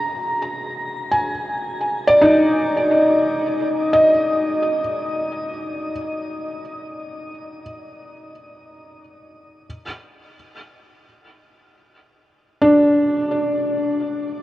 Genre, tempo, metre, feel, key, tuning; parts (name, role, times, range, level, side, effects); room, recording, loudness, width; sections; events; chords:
ambient; free time; A4 = 441 Hz
felt-muted upright piano; solo; 0.0-14.4 s; D4 to Bb5; -17 LUFS; equal; tape echo
wet shimmer reverb, RT60 9.4 s; worn, warbling old tape, cassette tape, warbly pitch drift; -16 LUFS; side -16 dB against mid
0.0-14.4 A section
0.0 Ebsus4; 9.7 N.C.